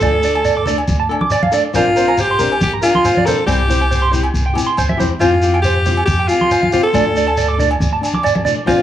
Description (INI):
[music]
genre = highlife guitar band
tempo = 139 BPM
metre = 4/4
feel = straight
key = unclear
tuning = A4 = 440 Hz
[part]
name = breathy alto saxophone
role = melody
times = 0.0-8.8 s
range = F4 to A4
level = -16 LUFS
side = left 1 dB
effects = none
[part]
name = flamenco guitar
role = accompaniment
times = 0.0-8.8 s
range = F3 to Bb4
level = -22 LUFS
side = left 7 dB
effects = none
[part]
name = clean electric guitar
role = arpeggios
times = 0.0-8.8 s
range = C5 to D6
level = -19 LUFS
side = right 5 dB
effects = analog chorus, analog delay
[part]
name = upright bass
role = bass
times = 0.0-8.8 s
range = Bb1 to F2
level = -19 LUFS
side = equal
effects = none
[part]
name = agogo bells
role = percussion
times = 0.0-8.8 s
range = none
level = -25 LUFS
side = right 2 dB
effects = none
[part]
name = shekere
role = percussion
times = 0.0-8.8 s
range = none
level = -24 LUFS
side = left 1 dB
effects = none
[part]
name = congas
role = percussion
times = 0.7-8.6 s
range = none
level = -23 LUFS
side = right 1 dB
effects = none
[sound]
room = moderate spring reverb, RT60 1.4 s, small room ambience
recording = none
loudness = -12 LUFS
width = side -11 dB against mid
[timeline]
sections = 0.0-8.8 A section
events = none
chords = 0.0 Dm; 1.8 Bbadd9; 3.5 C; 5.2 Fsus2; 6.9 D5